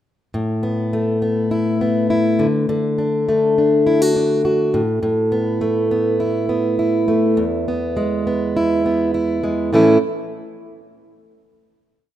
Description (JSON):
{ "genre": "acoustic pop", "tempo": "102 BPM", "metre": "4/4", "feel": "straight", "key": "unclear", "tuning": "A4 = 442 Hz", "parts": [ { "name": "fingerpicked plugged-in steel-string acoustic guitar", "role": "solo", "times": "0.3-10.0 s", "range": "E2 to F#4", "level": "-16 LUFS", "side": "equal", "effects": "none" } ], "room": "moderate lush hall reverb, RT60 2.3 s", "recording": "rough home demo mix", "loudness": "-16 LUFS", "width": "side -12 dB against mid", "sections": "0.4-9.7 verse; 9.7-12.1 final chord", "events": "none", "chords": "0.4 Asus2; 2.4 D; 4.8 Asus2; 7.4 E; 9.7 A" }